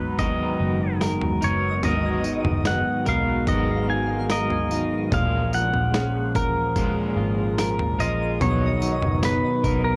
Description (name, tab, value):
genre	dream pop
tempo	73 BPM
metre	4/4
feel	straight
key	G# dorian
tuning	A4 = 440 Hz
part	pedal steel guitar	melody	0.0-10.0 s	A#4 to G#5	-29 LUFS	equal	analog delay
part	electric guitar at the edge of break-up	accompaniment	0.0-10.0 s	G#2 to A#4	-32 LUFS	equal	tremolo, subtle chorus
part	warbly tape-like pad	sustained chords	0.0-10.0 s	E#3 to A#5	-33 LUFS	equal	chorus, built-in reverb, plate reverb
part	clean electric guitar	arpeggios	0.0-10.0 s	G#2 to A#4	-30 LUFS	equal	subtle chorus, analog delay
part	vintage muted picked electric bass	bass	0.0-10.0 s	F#1 to B1	-30 LUFS	equal	none
part	dusty soul sampler-style drum kit	drums	0.2-9.8 s	kick drum, snare drum, tambourine, toms	-30 LUFS	equal	overdrive
part	twinkling granular texture	texture	1.7-10.0 s	D#5 to E#5	-40 LUFS	equal	built-in reverb, analog delay
room	moderate studio reverb, RT60 0.5 s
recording	worn, warbling old tape, cassette tape, warbly pitch drift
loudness	-23 LUFS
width	mono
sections	0.0-10.0 A section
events	none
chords	0.0 G#m9; 5.1 F#maj9/A#; 8.4 Bmaj7